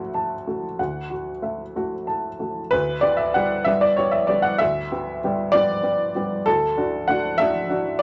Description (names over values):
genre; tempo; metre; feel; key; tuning
neoclassical minimalist piano; 63 BPM (dotted quarters); 6/8; uneven beats, rubato; unclear; A4 = 441 Hz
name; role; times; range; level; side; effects
warm upright piano; solo; 0.0-8.0 s; D2 to A5; -22 LUFS; equal; none
room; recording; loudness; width
moderate studio reverb, RT60 0.5 s; none; -22 LUFS; mono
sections
0.0-2.7 A section; 2.7-8.0 B section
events
none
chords
0.0 Dadd9; 2.7 G/D; 6.5 D